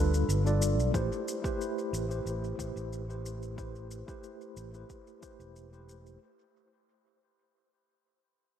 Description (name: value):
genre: sunset chillout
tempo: 91 BPM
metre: 4/4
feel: straight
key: A minor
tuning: A4 = 441 Hz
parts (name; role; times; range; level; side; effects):
- mellow tine electric piano; accompaniment; 0.0-6.2 s; G3 to D5; -35 LUFS; equal; medium stereo tremolo, auto-pan, dub echo
- fingered electric bass; bass; 0.0-6.2 s; E1 to D2; -32 LUFS; equal; none
- shaker; drums; 0.1-6.2 s; none; -42 LUFS; left 2 dB; overdrive, dub echo
- electronic kick drum; drums; 0.9-5.4 s; none; -36 LUFS; equal; overdrive
room: light reverb, digital ambience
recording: echo-heavy mix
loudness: -29 LUFS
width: side -10 dB against mid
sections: 0.0-6.2 A section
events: fade-out 0.0-6.2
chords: 0.0 G7; 0.9 Am7